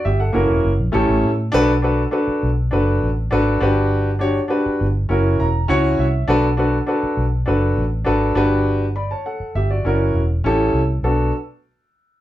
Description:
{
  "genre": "uptempo 1960s-style soul",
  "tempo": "101 BPM",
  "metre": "4/4",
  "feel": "straight",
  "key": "B minor",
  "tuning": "A4 = 441 Hz",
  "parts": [
    { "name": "warm concert grand piano", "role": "accompaniment", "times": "0.0-11.3 s", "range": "A3 to B5", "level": "-18 LUFS", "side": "equal", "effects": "none" },
    { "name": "vintage muted fingered electric bass", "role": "bass", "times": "0.1-11.3 s", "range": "E1 to A2", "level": "-20 LUFS", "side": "equal", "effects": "none" }
  ],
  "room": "wet studio reverb, RT60 0.5 s",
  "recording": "band playing live in one room",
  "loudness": "-16 LUFS",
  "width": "side -14 dB against mid",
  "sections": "0.0-1.5 A section; 1.5-11.0 B section; 11.0-12.2 C section",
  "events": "grand piano fill 5.1-6.3",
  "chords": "0.3 F#7; 0.9 A7; 1.5 Bm7; 3.6 Gmaj7; 5.1 F#7; 6.3 Bm7; 8.4 Gmaj7; 9.8 F#7; 10.4 A7; 11.0 Bm7"
}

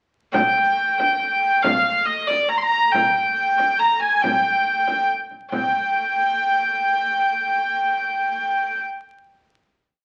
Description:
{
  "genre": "medieval dance",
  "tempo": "139 BPM",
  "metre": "3/4",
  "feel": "straight",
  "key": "G phrygian",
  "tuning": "A4 = 440 Hz",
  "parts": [
    { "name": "clear hurdy-gurdy", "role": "melody", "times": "0.3-8.8 s", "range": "D5 to C6", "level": "-20 LUFS", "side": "equal", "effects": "none" },
    { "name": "frame drum", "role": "percussion", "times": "0.3-5.7 s", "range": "none", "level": "-29 LUFS", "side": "equal", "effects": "none" }
  ],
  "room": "moderate studio reverb, RT60 0.8 s",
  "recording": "very old 78 rpm record, vinyl crackle",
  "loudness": "-20 LUFS",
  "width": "mono",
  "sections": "0.3-5.5 A section; 5.5-8.1 final note",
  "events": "none",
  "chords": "none"
}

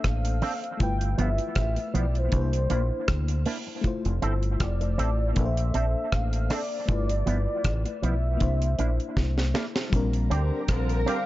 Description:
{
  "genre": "lovers rock reggae",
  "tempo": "79 BPM",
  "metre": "4/4",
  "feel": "swing 54% on 16ths",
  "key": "unclear",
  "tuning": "A4 = 440 Hz",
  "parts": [
    { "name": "warm velvety synth lead", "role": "melody", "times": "0.0-11.3 s", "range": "C5 to G5", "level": "-33 LUFS", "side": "equal", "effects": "chorus, tape echo" },
    { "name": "FM electric piano with tremolo", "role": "accompaniment", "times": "0.0-11.3 s", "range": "G3 to C5", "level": "-34 LUFS", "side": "left 5 dB", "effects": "none" },
    { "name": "deep dub fingered electric bass", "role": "bass", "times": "0.0-11.0 s", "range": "F1 to D2", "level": "-26 LUFS", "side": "equal", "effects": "none" },
    { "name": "deep reggae drum kit", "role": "drums", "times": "0.0-11.3 s", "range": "hi-hat, kick drum, rim click, snare drum", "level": "-28 LUFS", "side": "equal", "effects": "none" },
    { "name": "electric guitar with an envelope filter", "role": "stabs", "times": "0.4-11.2 s", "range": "F3 to A4", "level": "-33 LUFS", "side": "right 3 dB", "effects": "analog chorus, dub echo" },
    { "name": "soft string machine", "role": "second line", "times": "10.2-11.3 s", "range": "Bb4 to Bb5", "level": "-34 LUFS", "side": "right 1 dB", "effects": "ensemble chorus" },
    { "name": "dark horn section", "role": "second line", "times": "10.3-11.3 s", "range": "D3 to G4", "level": "-34 LUFS", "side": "right 1 dB", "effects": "none" }
  ],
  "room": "small room ambience",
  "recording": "dark, warm production, nothing above 7.6 kHz",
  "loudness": "-24 LUFS",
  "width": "side -16 dB against mid",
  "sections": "0.0-9.9 A section; 9.9-11.3 B section",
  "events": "drum fill 9.2-9.9",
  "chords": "0.0 Bbmaj9; 0.8 G13; 2.3 C9; 3.8 Fmaj7; 5.4 Bbmaj9; 6.9 G13; 8.4 C9; 9.9 Bb69"
}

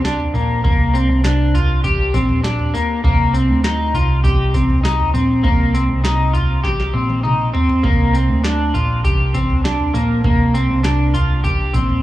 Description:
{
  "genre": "dream pop",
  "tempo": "100 BPM",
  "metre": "4/4",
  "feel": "straight",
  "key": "unclear",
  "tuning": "A4 = 440 Hz",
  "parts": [
    { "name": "electric guitar at the edge of break-up", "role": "arpeggios", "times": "0.0-12.0 s", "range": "Bb3 to G4", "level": "-18 LUFS", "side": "left 1 dB", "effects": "analog chorus, digital delay, shimmer reverb" },
    { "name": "vintage muted picked electric bass", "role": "bass", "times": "0.0-12.0 s", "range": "Bb1 to D2", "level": "-18 LUFS", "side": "equal", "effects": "none" },
    { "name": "booming analog drum machine", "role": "drums", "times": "0.0-12.0 s", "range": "kick drum, snare drum, tambourine, toms", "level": "-19 LUFS", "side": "right 1 dB", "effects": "none" }
  ],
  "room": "light reverb",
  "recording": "worn, warbling old tape, cassette tape, warbly pitch drift, small room ambience",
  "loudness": "-14 LUFS",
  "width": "side -15 dB against mid",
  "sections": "0.0-12.0 A section",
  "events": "drum fill 6.6-7.8",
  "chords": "0.0 Gm (rootless); 3.0 F9sus4; 7.8 Gm7"
}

